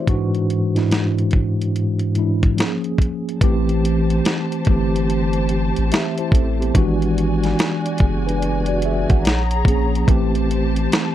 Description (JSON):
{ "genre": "lo-fi hip hop", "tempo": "72 BPM", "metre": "4/4", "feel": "swing 63% on 16ths", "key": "unclear", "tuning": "A4 = 440 Hz", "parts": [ { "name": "mellow tine electric piano", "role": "accompaniment", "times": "0.0-11.1 s", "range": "G#2 to F#5", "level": "-20 LUFS", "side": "equal", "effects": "medium stereo tremolo, cassette tape, low-pass filter" }, { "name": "dusty soul sampler-style drum kit", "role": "drums", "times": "0.1-11.1 s", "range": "hi-hat, kick drum, snare drum", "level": "-18 LUFS", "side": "equal", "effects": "none" }, { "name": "warm studio string section", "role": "sustained chords", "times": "3.4-11.1 s", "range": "F#4 to Bb5", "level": "-28 LUFS", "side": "left 1 dB", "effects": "low-pass filter" }, { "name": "soft dub sub bass", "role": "bass", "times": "3.4-10.9 s", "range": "F#1 to Bb1", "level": "-21 LUFS", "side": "equal", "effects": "none" } ], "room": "light reverb", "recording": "dark, warm production", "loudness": "-16 LUFS", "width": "side -12 dB against mid", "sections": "0.0-3.4 A section; 3.4-11.1 B section", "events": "filter sweep on tine electric piano 0.0-3.4", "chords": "0.1 E9/G#; 2.6 Bbm7; 3.4 Am7; 6.7 E9/G#; 9.2 Bbm7; 10.1 Am7" }